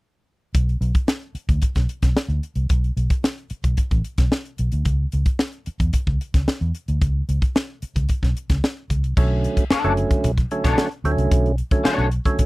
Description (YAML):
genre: funk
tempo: 112 BPM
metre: 4/4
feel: straight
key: B minor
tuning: A4 = 440 Hz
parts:
  - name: vintage muted fingered electric bass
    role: bass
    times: 0.5-12.4 s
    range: F#1 to E2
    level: -21 LUFS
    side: equal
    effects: none
  - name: crisp fusion drum kit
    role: drums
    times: 0.5-12.5 s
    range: crash cymbal, hi-hat, kick drum, snare drum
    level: -20 LUFS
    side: equal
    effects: none
  - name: percussive tonewheel organ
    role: stabs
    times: 9.2-12.5 s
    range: D3 to C#4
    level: -22 LUFS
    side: right 2 dB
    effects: overdrive, slow rotary speaker
  - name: electric guitar at the edge of break-up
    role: accompaniment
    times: 9.7-12.1 s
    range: B3 to D5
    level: -22 LUFS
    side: left 4 dB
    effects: ensemble chorus
room: little or no reverb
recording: dry, close 1970s-style studio recording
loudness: -19 LUFS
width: side -21 dB against mid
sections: 0.5-9.2 A section; 9.2-12.5 B section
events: none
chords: 0.5 Bm; 4.9 N.C.; 9.2 Bm9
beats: | 0.55 1.09 1.62 2.16 | 2.70 3.24 3.78 4.32 | 4.85 5.39 5.93 6.47 | 7.01 7.55 8.09 8.63 | 9.17 9.70 10.24 10.78 | 11.32 11.85 12.39